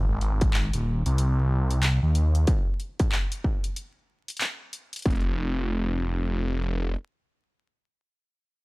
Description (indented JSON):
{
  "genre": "glitch hop",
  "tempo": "93 BPM",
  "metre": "4/4",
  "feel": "swing 61% on 16ths",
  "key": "unclear",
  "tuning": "A4 = 438 Hz",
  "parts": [
    { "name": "phased detuned saw bass", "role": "bass", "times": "0.0-7.0 s", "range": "Eb1 to Eb2", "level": "-23 LUFS", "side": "equal", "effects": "phaser" },
    { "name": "dubstep drum kit", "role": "drums", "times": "0.2-5.2 s", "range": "handclaps, hi-hat", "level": "-30 LUFS", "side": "left 1 dB", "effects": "studio reverb" },
    { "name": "electronic kick drum", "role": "drums", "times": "0.4-5.2 s", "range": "none", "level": "-24 LUFS", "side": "equal", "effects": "distortion, studio reverb" }
  ],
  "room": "little or no reverb",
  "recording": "dry, gritty hardware recording, vinyl crackle",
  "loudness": "-23 LUFS",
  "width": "side -23 dB against mid",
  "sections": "0.0-5.1 A section; 5.1-7.6 B section",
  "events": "filter sweep on detuned saw bass 0.0-2.5",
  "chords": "none"
}